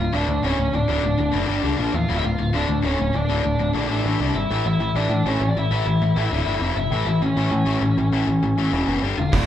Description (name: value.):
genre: punk rock.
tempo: 199 BPM.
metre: 4/4.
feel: straight.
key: D harmonic minor.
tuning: A4 = 436 Hz.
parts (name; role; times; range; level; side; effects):
lead guitar through a small cranked amp; melody; 0.0-9.5 s; C#4 to F5; -24 LUFS; right 1 dB; overdrive.
distorted electric guitar; riff; 0.0-9.5 s; D2 to C4; -23 LUFS; left 4 dB; overdrive.
growling picked electric bass; bass; 0.0-9.4 s; D1 to A2; -24 LUFS; right 1 dB; overdrive.
tight distorted guitar; riff; 9.3-9.5 s; D2 to D3; -30 LUFS; right 7 dB; distortion.
loose indie drum kit; drums; 9.3-9.4 s; hi-hat, kick drum; -18 LUFS; right 1 dB; none.
room: moderate large studio reverb, RT60 1.3 s.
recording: band playing live in one room.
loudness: -19 LUFS.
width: side -11 dB against mid.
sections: 0.0-9.5 A section.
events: none.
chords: 0.0 D5; 1.5 G5; 1.8 Bb5; 2.1 Dm; 3.9 A5; 4.2 C5; 4.5 A; 6.3 D5; 6.6 F5; 6.9 A; 8.7 E5; 9.0 G5.